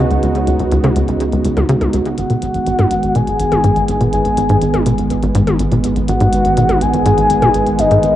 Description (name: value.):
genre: ambient, sequencer-driven space music.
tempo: 123 BPM.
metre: 4/4.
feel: straight.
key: unclear.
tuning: A4 = 440 Hz.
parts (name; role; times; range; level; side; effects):
sweeping resonant pad; sustained chords; 0.0-8.2 s; C#3 to F#4; -17 LUFS; right 2 dB; chorus.
tight sequencer bass; riff; 0.0-8.1 s; G#1 to C#3; -17 LUFS; equal; wide subtle chorus, tape echo.
warm sub bass; bass; 0.0-8.2 s; G#1 to C#2; -22 LUFS; equal; none.
minimal click drum kit; percussion; 0.1-8.1 s; hi-hat, toms; -25 LUFS; left 2 dB; tape echo.
soft octave-layered synth lead; melody; 2.2-8.2 s; D#5 to G#5; -16 LUFS; left 2 dB; chorus, tremolo, tape echo.
room: wet plate reverb, RT60 3.7 s.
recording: worn, warbling old tape, cassette tape, warbly pitch drift.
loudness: -12 LUFS.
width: side -12 dB against mid.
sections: 0.0-8.2 A section.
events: none.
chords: 0.0 C#7(no3); 2.2 G#m.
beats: | 0.23 0.72 1.20 1.69 | 2.18 2.67 3.15 3.64 | 4.13 4.62 5.11 5.59 | 6.08 6.57 7.06 7.54 | 8.03.